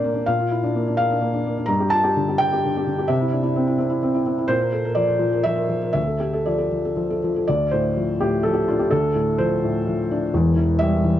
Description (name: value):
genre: neoclassical minimalist piano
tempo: 127 BPM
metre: 3/4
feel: rubato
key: D minor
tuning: A4 = 439 Hz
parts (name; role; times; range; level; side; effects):
- felt-muted upright piano; solo; 0.0-11.2 s; E1 to Bb5; -18 LUFS; equal; none
room: light reverb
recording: worn, warbling old tape, cassette tape, warbly pitch drift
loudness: -19 LUFS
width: side -11 dB against mid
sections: 0.0-7.5 A section; 7.5-11.2 B section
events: none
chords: 0.0 Bb; 1.7 G5; 3.1 C; 4.5 Bb; 6.0 Dm; 7.5 Dm7; 10.3 C/E (rootless)